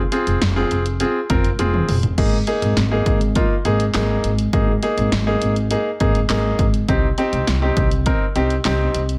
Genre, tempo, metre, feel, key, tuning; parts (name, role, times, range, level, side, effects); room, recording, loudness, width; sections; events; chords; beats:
synth-pop; 102 BPM; 4/4; straight; A4 = 440 Hz
upright bass; bass; 0.0-9.2 s; F1 to C2; -23 LUFS; equal
clear concert grand piano; accompaniment; 0.1-9.0 s; Bb3 to Bb4; -23 LUFS; equal
punchy analog drum machine; drums; 0.1-9.2 s; crash cymbal, handclaps, hi-hat, kick drum, snare drum, toms; -24 LUFS; equal
light reverb; -19 LUFS; mono
0.0-9.2 A section
drum fill 1.6-2.2
0.0 Fm; 2.2 Absus2; 6.9 Cm
0.41 1.00 1.59 | 2.18 2.77 3.36 3.94 | 4.53 5.12 5.71 6.30 | 6.89 7.47 8.06 8.65